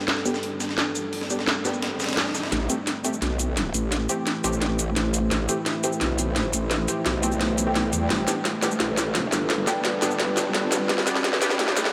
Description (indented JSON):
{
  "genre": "dark technical drum and bass",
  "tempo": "172 BPM",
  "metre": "4/4",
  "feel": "straight",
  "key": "A minor",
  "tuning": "A4 = 440 Hz",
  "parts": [
    { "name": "deep dark ambient pad", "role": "sustained chords", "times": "0.0-11.9 s", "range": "G3 to C5", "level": "-32 LUFS", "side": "equal", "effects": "chorus, built-in reverb" },
    { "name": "riser", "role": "sound effects", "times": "0.5-11.9 s", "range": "none", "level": "-38 LUFS", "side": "equal", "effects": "none" },
    { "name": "breakbeat sampler-style drum kit", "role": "drums", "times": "0.1-2.5 s", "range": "hi-hat, snare drum", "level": "-34 LUFS", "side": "equal", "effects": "high-pass filter on hats, high-pass filter on snare, high-pass filter on room" },
    { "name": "drum and bass drum kit", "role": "drums", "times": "0.1-11.9 s", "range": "hi-hat, shaker, snare drum", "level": "-28 LUFS", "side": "equal", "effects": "low-pass filter on perc, low-pass filter on snare, low-pass filter on hats, low-pass filter on room" },
    { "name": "band-passed chord stab", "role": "stabs", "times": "0.3-11.5 s", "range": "A3 to G4", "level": "-33 LUFS", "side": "equal", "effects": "lush chorus, tape echo" },
    { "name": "growl bass", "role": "bass", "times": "2.5-11.9 s", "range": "G1 to E2", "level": "-29 LUFS", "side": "equal", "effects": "chorus, tube saturation" }
  ],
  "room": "wet cathedral reverb, RT60 5.4 s",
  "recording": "dreamy mix soaked in reverb, high-pass filter",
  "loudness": "-24 LUFS",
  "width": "mono",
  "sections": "0.0-2.5 A section; 2.5-11.9 B section",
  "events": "riser 0.5-2.5; build-up 2.5-11.9; drum fill 2.5-11.9; filter sweep on synth stab 2.5-11.9",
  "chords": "0.0 G; 2.5 Am7; 8.1 G"
}